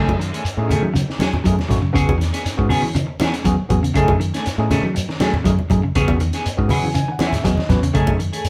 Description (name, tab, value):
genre	afrobeat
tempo	120 BPM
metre	4/4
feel	straight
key	F# dorian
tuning	A4 = 441 Hz
part	overdriven tine electric piano	accompaniment	0.0-8.2 s	A3 to B5	-27 LUFS	equal	fast tremolo
part	clean electric guitar	arpeggios	0.0-8.4 s	C#3 to F#3	-24 LUFS	equal	none
part	clean electric guitar	stabs	0.0-8.5 s	D#3 to G#4	-27 LUFS	equal	phaser
part	fingered electric bass	bass	0.0-8.3 s	E2 to F#3	-24 LUFS	equal	none
part	crunchy breakbeat drum kit	drums	0.1-8.5 s	hi-hat, kick drum, snare drum	-26 LUFS	equal	none
part	congas	percussion	0.1-8.2 s	none	-26 LUFS	equal	none
part	shekere	percussion	0.2-8.5 s	none	-30 LUFS	equal	none
room	moderate studio reverb, RT60 0.7 s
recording	band playing live in one room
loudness	-19 LUFS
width	mono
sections	0.0-8.5 A section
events	tine electric piano fill 6.5-8.0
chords	0.0 F#m69; 2.0 E69; 4.0 F#m69; 6.0 E69; 8.0 F#m69